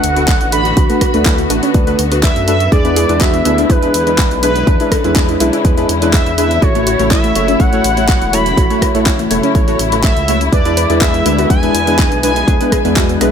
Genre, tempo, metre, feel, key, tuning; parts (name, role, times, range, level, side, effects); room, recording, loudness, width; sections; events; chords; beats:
progressive house; 123 BPM; 4/4; straight; E mixolydian; A4 = 440 Hz
expressive synth lead; melody; 0.0-12.7 s; B4 to B5; -18 LUFS; right 1 dB; analog chorus, digital delay
warm studio string section; sustained chords; 0.0-13.3 s; C#3 to F#4; -21 LUFS; left 4 dB; sidechain pumping
soft round pluck; arpeggios; 0.0-13.3 s; A3 to B4; -20 LUFS; right 1 dB; lush chorus, sidechain pumping, ping-pong delay
deep mellow chord stab; stabs; 0.0-13.3 s; G#3 to C#5; -17 LUFS; left 1 dB; ensemble chorus, sidechain pumping, ping-pong delay
dark detuned saw bass; bass; 0.0-13.3 s; E1 to F#2; -19 LUFS; equal; sidechain pumping
pop drum kit; drums; 0.0-13.3 s; handclaps, hi-hat, rim click; -20 LUFS; equal
sub drop; sound effects; 0.0-0.8 s; -34 LUFS; right 1 dB
electronic kick drum; drums; 0.3-13.1 s; -14 LUFS; equal
light reverb; -10 LUFS; side -8 dB against mid
0.0-13.3 A section
impact 0.0-0.8
0.0 D6; 2.7 E7; 6.6 A6; 10.5 E7
0.28 | 0.77 1.26 1.75 2.23 | 2.72 3.21 3.70 4.18 | 4.67 5.16 5.65 6.14 | 6.62 7.11 7.60 8.09 | 8.57 9.06 9.55 10.04 | 10.53 11.01 11.50 11.99 | 12.48 12.96